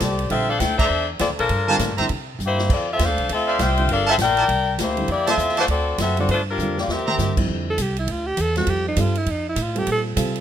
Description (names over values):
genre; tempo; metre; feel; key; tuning
jazz, big band swing; 201 BPM; 4/4; swing 63% on 8ths; F major; A4 = 435 Hz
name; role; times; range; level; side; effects
clear saxophone section; melody; 0.0-7.4 s; F3 to G5; -21 LUFS; left 3 dB; none
upright bass; bass; 0.0-10.4 s; G1 to C3; -24 LUFS; right 1 dB; none
swinging big-band drum kit; drums; 0.0-10.4 s; crash cymbal, hi-hat, kick drum, ride cymbal, snare drum, toms; -27 LUFS; right 1 dB; none
dark baby grand piano; accompaniment; 0.3-10.4 s; F2 to A4; -27 LUFS; right 2 dB; none
brilliant trumpet section; stabs; 0.8-7.1 s; E4 to Bb5; -24 LUFS; right 3 dB; none
bright alto saxophone; melody; 7.7-10.0 s; Eb4 to A4; -24 LUFS; right 2 dB; none
room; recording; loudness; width
studio reverb; rough home demo mix; -18 LUFS; side -10 dB against mid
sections
0.0-7.5 A section; 7.5-10.4 B section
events
band accent 0.8, 5.2; drum fill 2.4, 6.6-7.2; alto saxophone solo 7.5-10.4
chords
0.3 Bbmaj9; 1.5 Gm9; 2.1 C7; 2.7 F6; 3.3 Dm9; 3.9 Gm9; 4.5 C9; 5.1 Fmaj7; 5.7 D7; 6.3 Gm7; 6.9 C7; 7.5 Fmaj7; 8.7 Fadd9; 9.9 Bbsus2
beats
0.01 | 0.30 0.60 0.90 1.20 | 1.50 1.80 2.10 2.40 | 2.70 3.00 3.30 3.60 | 3.89 4.19 4.49 4.79 | 5.09 5.39 5.69 5.99 | 6.29 6.59 6.88 7.18 | 7.48 7.78 8.08 8.38 | 8.68 8.98 9.27 9.57 | 9.87 10.17